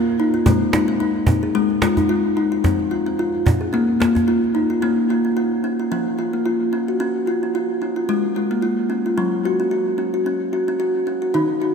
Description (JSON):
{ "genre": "world meditative, meditative tuned percussion", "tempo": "110 BPM", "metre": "4/4", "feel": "swing 56% on 16ths", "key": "Bb minor", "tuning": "A4 = 440 Hz", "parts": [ { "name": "kalimba", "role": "arpeggios", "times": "0.0-11.7 s", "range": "Eb3 to Ab4", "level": "-18 LUFS", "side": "left 1 dB", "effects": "diffuse ambient delay" }, { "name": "cajon", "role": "percussion", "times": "0.3-4.6 s", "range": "none", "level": "-21 LUFS", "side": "right 1 dB", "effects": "none" } ], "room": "wet church reverb, RT60 3.5 s", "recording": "none", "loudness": "-17 LUFS", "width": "side -6 dB against mid", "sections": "0.0-4.8 A section; 4.8-11.7 B section", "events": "none", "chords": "0.5 Ab; 2.6 F5; 3.7 Bbm; 7.0 Db; 9.2 Gb5" }